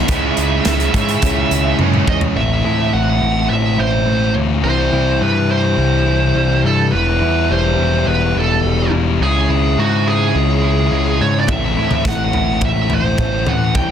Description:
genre	quiet-loud alternative rock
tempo	105 BPM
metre	4/4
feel	straight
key	unclear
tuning	A4 = 440 Hz
part	high-gain lead guitar	melody	0.0-13.9 s	F#4 to G5	-19 LUFS	right 4 dB	distortion
part	crunchy overdriven guitar	riff	0.0-2.4 s	C#3 to C#4	-22 LUFS	right 16 dB	none
part	distorted electric guitar	riff	0.0-2.4 s	C#3 to E4	-23 LUFS	right 1 dB	distortion
part	thick fuzz guitar	riff	0.0-13.9 s	A2 to E4	-19 LUFS	left 6 dB	distortion
part	growling picked electric bass	bass	0.0-13.9 s	E1 to A2	-18 LUFS	equal	overdrive
part	big rock drum kit	drums	0.1-2.4, 11.5-13.9 s	hi-hat, kick drum, snare drum, toms	-20 LUFS	equal	none
part	electric guitar through a small old amp	arpeggios	2.4-13.9 s	E2 to E4	-24 LUFS	right 2 dB	tremolo
room	light reverb, small room ambience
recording	dense, heavily limited modern master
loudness	-13 LUFS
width	side -8 dB against mid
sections	0.0-2.4 A section; 2.4-13.9 B section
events	drum fill 1.8-2.4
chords	0.1 C#m; 2.4 Am; 4.7 C; 6.9 Em; 9.2 C#m; 11.5 Am

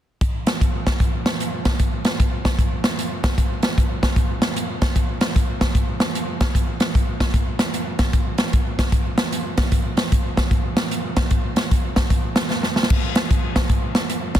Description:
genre	gospel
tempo	151 BPM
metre	4/4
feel	swing 65% on 8ths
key	none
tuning	none
part	swinging big-band drum kit	drums	0.2-14.4 s	crash cymbal, hi-hat, kick drum, snare drum	-18 LUFS	equal	none
room	light reverb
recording	dense, heavily limited modern master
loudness	-18 LUFS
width	side -11 dB against mid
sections	0.2-6.5 A section; 6.5-14.4 B section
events	drum fill 12.5-12.9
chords	none

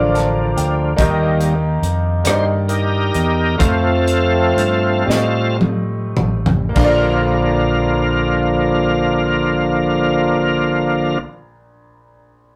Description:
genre	slow gospel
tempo	33-48 BPM (dotted quarters)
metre	6/8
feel	straight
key	Bb major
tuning	A4 = 442 Hz
part	bright concert grand piano	accompaniment	0.0-12.6 s	Bb1 to A5	-24 LUFS	equal	none
part	bright tonewheel organ	sustained chords	0.0-11.2 s	D3 to C5	-19 LUFS	equal	slow rotary speaker, overdrive, chorus vibrato
part	fingered electric bass	bass	0.0-11.2 s	A1 to A2	-23 LUFS	equal	none
part	tight funk drum kit	drums	0.2-7.0 s	crash cymbal, hi-hat, kick drum, rim click, snare drum, toms	-22 LUFS	equal	none
room	moderate studio reverb, RT60 0.6 s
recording	rough rehearsal-room recording, tube saturation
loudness	-17 LUFS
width	mono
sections	0.0-6.8 A section; 6.8-10.4 B section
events	grand piano fill 0.0-1.0; tonewheel organ solo 0.0-6.8; slowing down 1.0-6.8; drum fill 5.1-6.8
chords	0.0 Bb; 1.0 Eb; 3.6 F; 6.8 Bb

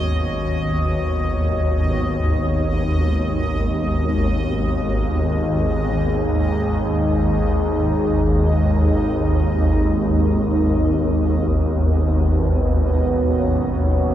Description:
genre	dark ambient drone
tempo	free time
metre	none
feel	none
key	G# minor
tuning	A4 = 441 Hz
part	deep dark ambient pad	sustained chords	0.0-14.1 s	G#3 to C#5	-23 LUFS	right 1 dB	chorus, built-in reverb
part	swarming drone	drone	0.0-14.1 s	G#1 to D#2	-18 LUFS	equal	built-in reverb
part	bubbling stepped-filter texture	texture	0.0-14.1 s	D#5	-31 LUFS	right 1 dB	chorus, built-in reverb
room	moderate huge ambient reverb, RT60 7.9 s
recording	none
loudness	-17 LUFS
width	side -11 dB against mid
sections	0.0-14.1 A section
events	fade-in on ambient pad 0.0-14.1; fade-out on synth texture 0.0-14.1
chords	0.0 G#m7

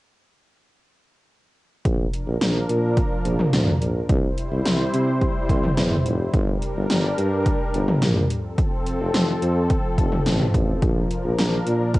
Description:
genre	synth-pop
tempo	107 BPM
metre	4/4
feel	straight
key	unclear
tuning	A4 = 440 Hz
part	warm analog pad	sustained chords	1.8-12.0 s	F3 to C5	-26 LUFS	left 1 dB	chorus, cassette tape, plate reverb
part	warm tuba	bass	1.9-12.0 s	F1 to C3	-23 LUFS	equal	none
part	80s electronic pad drums	drums	1.9-12.0 s	hi-hat, kick drum, snare drum, toms	-22 LUFS	equal	gated reverb on snare and toms, overdrive, cassette tape
room	light reverb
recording	home recording on cassette, nothing above 10.8 kHz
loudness	-19 LUFS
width	side -19 dB against mid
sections	1.9-12.0 A section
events	none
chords	1.9 Bb; 4.1 C; 6.3 Gm; 8.3 F; 10.8 Bb

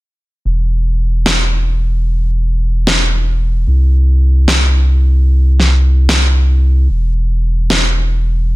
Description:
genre	future bass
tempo	149 BPM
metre	4/4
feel	swing 55% on 16ths, half-time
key	unclear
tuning	A4 = 440 Hz
part	saturated sub bass	bass	0.5-8.6 s	E1 to C2	-11 LUFS	equal	none
part	electronic snare drum	drums	1.3-7.8 s	none	-15 LUFS	equal	studio reverb
room	little or no reverb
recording	dense, heavily limited modern master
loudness	-11 LUFS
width	side -19 dB against mid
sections	0.5-8.6 A section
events	none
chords	none

